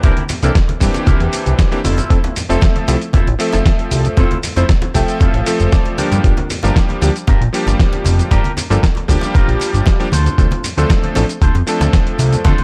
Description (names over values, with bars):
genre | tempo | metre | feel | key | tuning
nu-disco, nu disco | 116 BPM | 4/4 | straight | G dorian | A4 = 441 Hz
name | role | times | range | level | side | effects
bright electric grand piano | accompaniment | 0.0-12.5 s | E3 to E5 | -22 LUFS | equal | sidechain pumping, delay
electric guitar with an envelope filter | riff | 0.0-12.6 s | C4 to G5 | -27 LUFS | equal | subtle chorus, delay
fat analog bass | bass | 0.0-12.5 s | F1 to G2 | -18 LUFS | equal | none
dusty soul sampler-style drum kit | drums | 0.0-12.6 s | cabasa, hi-hat, rim click, snare drum | -26 LUFS | equal | overdrive
electronic kick drum | drums | 0.0-12.6 s | none | -16 LUFS | equal | overdrive
congas | percussion | 0.0-12.6 s | none | -28 LUFS | equal | none
room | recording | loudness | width
digital ambience | dark, warm production | -15 LUFS | mono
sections
0.0-12.6 A section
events
clean electric guitar fill 4.7-6.2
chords
0.0 C9; 1.8 Fmaj7; 6.0 Gm7; 10.1 Dm7